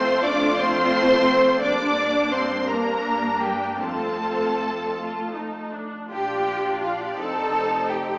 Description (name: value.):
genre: classical, slow romantic movement for string orchestra.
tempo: 51-60 BPM (dotted quarters).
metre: 6/8.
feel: rubato.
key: unclear.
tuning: A4 = 440 Hz.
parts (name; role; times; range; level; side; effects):
rich symphonic violin section; melody; 0.0-8.2 s; D5 to D6; -29 LUFS; equal; none.
warm symphonic violin section; second line; 0.0-8.2 s; G4 to A5; -23 LUFS; equal; none.
rich symphonic viola section; accompaniment; 0.0-8.2 s; A3 to F4; -27 LUFS; equal; none.
clear symphonic cello section; bass; 0.0-8.2 s; G3 to A4; -26 LUFS; equal; none.
rich symphonic double bass section; bass; 0.0-8.2 s; F1 to G2; -35 LUFS; equal; none.
room: wet recital hall reverb, RT60 1.6 s.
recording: heard from further back in the room, small speaker sound.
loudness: -20 LUFS.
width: side -37 dB against mid.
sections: 0.0-6.1 A section; 6.1-8.2 B section.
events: none.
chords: 0.0 F; 1.6 Gm; 3.8 F; 6.1 Bb; 7.2 F7.